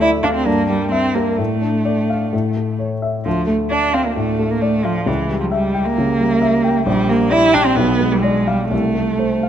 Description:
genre	quick classical-period movement for piano trio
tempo	131 BPM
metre	4/4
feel	straight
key	D minor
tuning	A4 = 439 Hz
part	rich cello	second line	0.0-9.5 s	E3 to E4	-17 LUFS	right 3 dB	none
part	warm grand piano	accompaniment	0.0-9.5 s	Bb1 to G5	-19 LUFS	left 3 dB	none
room	light reverb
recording	close, detailed microphones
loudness	-15 LUFS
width	side -9 dB against mid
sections	0.0-9.5 A section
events	none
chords	0.5 Edim/G; 1.4 Dm/A; 2.3 A; 3.3 Dm; 5.1 C#dim7; 6.9 Gm/Bb; 7.8 Bdim7; 8.7 F/C (rootless)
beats	0.01 0.47 0.92 | 1.39 1.86 2.33 2.79 | 3.26 3.72 4.17 4.62 | 5.08 5.52 5.97 6.42 | 6.86 7.32 7.77 8.24 | 8.72 9.20

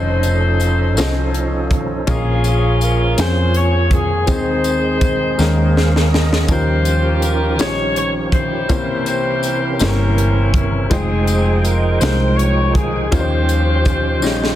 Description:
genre	slow gospel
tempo	54 BPM (dotted quarters)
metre	6/8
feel	straight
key	unclear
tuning	A4 = 440 Hz
part	clear saxophone section	melody	0.0-14.6 s	C4 to Db5	-21 LUFS	left 2 dB	none
part	warm upright piano	accompaniment	0.0-14.6 s	Bb2 to Ab5	-21 LUFS	left 2 dB	none
part	tonewheel organ	sustained chords	0.0-14.6 s	C3 to G5	-24 LUFS	right 4 dB	slow rotary speaker, overdrive, chorus vibrato
part	hollow-body short-scale fingered electric bass	bass	0.0-14.6 s	F1 to F2	-17 LUFS	equal	none
part	crisp fusion drum kit	drums	0.2-14.6 s	hi-hat, kick drum, snare drum	-20 LUFS	equal	none
part	tambourine	percussion	0.2-14.6 s	none	-33 LUFS	left 4 dB	none
room	light reverb, small room ambience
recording	dense, heavily limited modern master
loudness	-14 LUFS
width	side -12 dB against mid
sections	0.0-14.6 A section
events	drum fill 5.4-6.5, 14.2-14.6; tonewheel organ fill 5.4-6.5, 14.2-14.6; upright piano fill 14.2-14.6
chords	0.0 F7b13; 2.1 Bbm7; 4.3 Ab/Eb; 5.4 Eb7sus4; 6.5 Eb9; 8.7 C7b9; 10.9 Fm9; 13.1 Eb13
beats	0.97 | 2.08 3.18 | 4.28 5.38 | 6.49 7.59 | 8.70 9.80 | 10.90 12.01 | 13.11 14.22

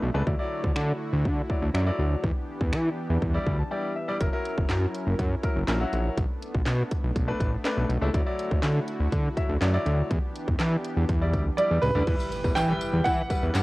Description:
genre	dance-pop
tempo	122 BPM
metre	4/4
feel	straight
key	unclear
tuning	A4 = 440 Hz
part	soft supersaw	sustained chords	0.0-13.6 s	D3 to B4	-36 LUFS	equal	sidechain pumping, cassette tape
part	fat analog bass	bass	0.0-13.6 s	F#1 to E3	-25 LUFS	equal	sidechain pumping
part	clear baby grand piano	accompaniment	0.1-13.6 s	F#3 to B5	-31 LUFS	left 2 dB	cassette tape
part	house drum kit	drums	0.3-13.6 s	crash cymbal, finger snaps, handclaps, hi-hat, kick drum, snare drum, toms	-28 LUFS	equal	overdrive, cassette tape
part	warm baby grand piano	melody	11.6-13.6 s	B4 to G5	-26 LUFS	right 2 dB	cassette tape
part	impact	sound effects	12.2-13.6 s	none	-38 LUFS	equal	none
part	tambourine	percussion	12.2-13.6 s	none	-44 LUFS	left 7 dB	none
room	little or no reverb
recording	home recording on cassette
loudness	-24 LUFS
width	side -20 dB against mid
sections	0.0-12.1 A section; 12.1-13.6 B section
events	grand piano fill 3.2-4.2; break 3.7-4.2; drum fill 11.6-12.1; impact 12.1-13.6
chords	0.3 Dadd9; 2.2 Em7; 4.2 F#7; 6.2 Bm7; 8.1 Dadd9; 10.1 Em7; 12.1 Em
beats	| 0.27 0.76 1.25 1.75 | 2.24 2.73 3.22 3.71 | 4.21 4.70 5.19 5.68 | 6.17 6.67 7.16 7.65 | 8.14 8.63 9.12 9.62 | 10.11 10.60 11.09 11.58 | 12.07 12.57 13.06 13.55

